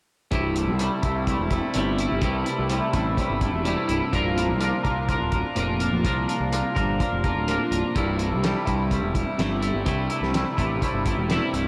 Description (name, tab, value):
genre	psychedelic rock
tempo	126 BPM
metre	4/4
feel	straight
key	C mixolydian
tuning	A4 = 440 Hz
part	twangy electric guitar	riff	0.3-11.7 s	C2 to Bb4	-27 LUFS	equal	phaser, double-tracked, analog delay
part	fuzz picked electric bass	bass	0.3-11.6 s	C1 to C2	-29 LUFS	equal	overdrive
part	cloth-damped thuddy drum kit	drums	0.3-11.7 s	hi-hat, kick drum, snare drum	-31 LUFS	equal	none
room	light reverb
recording	echo-heavy mix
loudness	-24 LUFS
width	mono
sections	0.3-11.7 A section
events	none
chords	0.3 C6; 4.1 Bb/C; 8.0 C6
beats	| 0.31 0.79 1.27 1.75 | 2.23 2.70 3.18 3.66 | 4.14 4.61 5.09 5.57 | 6.05 6.53 7.00 7.48 | 7.96 8.44 8.91 9.39 | 9.87 10.35 10.82 11.30